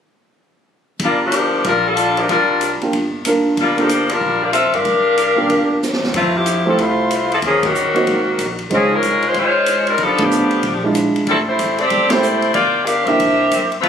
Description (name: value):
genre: jazz, big band swing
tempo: 187 BPM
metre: 4/4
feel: swing 63% on 8ths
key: unclear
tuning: A4 = 441 Hz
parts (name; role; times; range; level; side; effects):
- bright saxophone section; melody; 1.0-13.9 s; Eb3 to F5; -15 LUFS; left 2 dB; none
- upright bass; bass; 1.0-13.9 s; E1 to Ab2; -28 LUFS; equal; none
- swinging big-band drum kit; drums; 1.0-13.9 s; hi-hat, kick drum, ride cymbal, snare drum; -25 LUFS; equal; none
- warm grand piano; accompaniment; 2.8-13.5 s; Ab3 to Bb4; -18 LUFS; right 2 dB; none
room: moderate large studio reverb, RT60 1.1 s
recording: recorded on a phone in the room, club reverb, compression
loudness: -14 LUFS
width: side -8 dB against mid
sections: 1.0-6.1 A section; 6.1-13.9 B section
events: drum fill 5.8-6.1; band accent 7.6, 10.2, 12.1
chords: 1.0 Gm7; 2.3 C9sus4; 3.6 Gm7; 4.9 C9sus4; 6.1 Fmaj7; 7.4 Ebm7; 8.1 Ab7; 8.7 Dbmaj7; 10.0 Bm7b5; 10.6 Bb7#11; 11.3 Am7; 12.6 Gm7; 13.2 C7